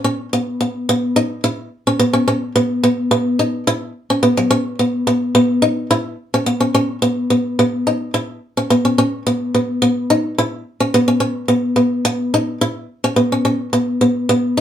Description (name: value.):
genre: highlife.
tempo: 107 BPM.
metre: 4/4.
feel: straight.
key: unclear.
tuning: A4 = 438 Hz.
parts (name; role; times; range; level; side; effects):
picked swing-style acoustic guitar; solo; 0.0-14.6 s; F#3 to E4; -15 LUFS; equal; none.
room: wet studio ambience, RT60 0.5 s.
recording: band playing live in one room.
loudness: -15 LUFS.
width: side -10 dB against mid.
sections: 0.0-7.6 A section; 7.6-14.6 B section.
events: none.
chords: none.